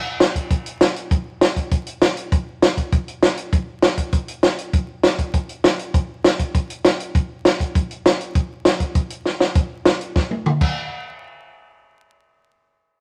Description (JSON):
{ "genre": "rock", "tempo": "199 BPM", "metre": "4/4", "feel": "straight", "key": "none", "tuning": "none", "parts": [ { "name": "compact cocktail drum kit", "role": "drums", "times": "0.2-10.7 s", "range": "crash cymbal, hi-hat, kick drum, snare drum, toms", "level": "-20 LUFS", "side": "equal", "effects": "none" } ], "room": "light reverb", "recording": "vinyl crackle", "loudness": "-20 LUFS", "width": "mono", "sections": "0.0-9.6 A section; 9.6-10.8 B section; 10.8-13.0 C section", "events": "drum fill 9.3-9.6, 10.2-10.8", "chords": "none" }